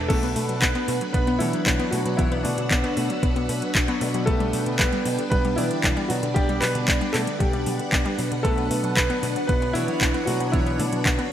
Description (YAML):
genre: italo disco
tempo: 115 BPM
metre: 4/4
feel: straight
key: B minor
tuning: A4 = 441 Hz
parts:
  - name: string machine, full ensemble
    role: sustained chords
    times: 0.0-11.3 s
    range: D4 to E6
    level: -30 LUFS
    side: equal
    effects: ensemble chorus
  - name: chorused polysynth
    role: stabs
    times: 0.0-11.3 s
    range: F#3 to D5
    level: -30 LUFS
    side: right 1 dB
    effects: none
  - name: picked electric bass with an envelope filter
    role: bass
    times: 0.0-11.2 s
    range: B1 to B2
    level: -28 LUFS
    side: equal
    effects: none
  - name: warm concert grand piano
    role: melody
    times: 0.1-11.3 s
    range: D3 to B4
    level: -27 LUFS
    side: equal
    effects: digital delay
  - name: analog pluck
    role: arpeggios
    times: 0.1-11.3 s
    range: D3 to B3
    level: -30 LUFS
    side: left 2 dB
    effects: chorus, digital delay
  - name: electronic kick drum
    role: drums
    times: 0.1-11.2 s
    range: none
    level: -24 LUFS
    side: equal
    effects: overdrive
  - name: house drum kit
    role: drums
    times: 0.1-11.3 s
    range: crash cymbal, handclaps, hi-hat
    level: -27 LUFS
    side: equal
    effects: overdrive
room: moderate lush hall reverb, RT60 2.5 s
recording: bright 1980s-style digital production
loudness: -20 LUFS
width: side -10 dB against mid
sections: 0.1-11.3 A section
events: none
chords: 0.1 Bm; 4.3 G/B; 8.4 Bm